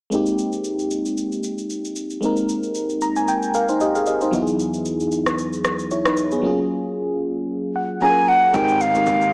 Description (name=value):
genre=amapiano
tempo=114 BPM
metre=4/4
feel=swing 55% on 16ths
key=Ab major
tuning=A4 = 440 Hz
part: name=mellow FM electric piano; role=accompaniment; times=0.1-9.3 s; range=F#3 to Bb5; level=-20 LUFS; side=equal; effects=chorus
part: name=deep house drum kit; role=drums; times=0.1-9.3 s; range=kick drum, rim click, shaker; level=-26 LUFS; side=equal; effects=none
part: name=fingered electric bass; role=bass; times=4.3-9.3 s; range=Ab1 to E2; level=-28 LUFS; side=equal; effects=none
part: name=breathy hollow jazz flute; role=melody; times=8.0-9.3 s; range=F5 to Ab5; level=-15 LUFS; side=equal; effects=none
part: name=glassy FM pad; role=sustained chords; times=8.8-9.3 s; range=Eb3 to G4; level=-31 LUFS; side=equal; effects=ensemble chorus, built-in reverb
part: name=impact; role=sound effects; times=8.6-9.3 s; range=none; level=-36 LUFS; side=equal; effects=none
room=moderate recital hall reverb, RT60 1.5 s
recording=small speaker sound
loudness=-18 LUFS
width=side -28 dB against mid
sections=0.1-8.5 A section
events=FM electric piano fill 2.8-4.3, 7.5-8.5; impact 8.5-9.3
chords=0.1 Abmaj9; 4.3 Emaj9; 6.4 Gbmaj9; 8.5 Abmaj9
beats=| 0.12 0.65 1.17 1.70 | 2.23 2.75 3.28 3.80 | 4.33 4.86 5.38 5.91 | 6.44 6.96 7.49 8.02 | 8.54 9.07